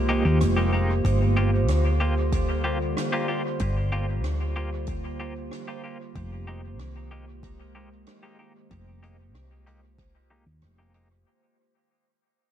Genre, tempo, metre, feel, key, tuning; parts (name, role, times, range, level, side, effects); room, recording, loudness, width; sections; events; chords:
ambient dub; 94 BPM; 4/4; straight; F dorian; A4 = 440 Hz
warbly tape-like pad; sustained chords; 0.0-11.3 s; D3 to G4; -30 LUFS; right 2 dB; chorus, built-in reverb
hollow-body short-scale fingered electric bass; bass; 0.0-11.2 s; F1 to Eb2; -25 LUFS; equal
bubbling stepped-filter texture; texture; 0.0-11.3 s; C5; -36 LUFS; right 1 dB; chorus, built-in reverb
clean electric guitar; stabs; 0.1-11.1 s; Ab3 to G4; -32 LUFS; left 2 dB; tremolo, low-pass filter, dub echo
soft-mallet drum kit; drums; 0.4-11.1 s; hi-hat, rim click; -39 LUFS; right 2 dB; low-pass filter on hats, low-pass filter on snare, low-pass filter on room, dub echo
electronic kick drum; drums; 1.0-10.1 s; -31 LUFS; equal
little or no reverb; echo-heavy mix; -22 LUFS; side -10 dB against mid
0.0-11.3 A section
fade-out 0.0-11.3; filter sweep on fingered electric bass 0.0-11.3
0.0 Fm11; 1.0 Gm7; 6.2 Fm11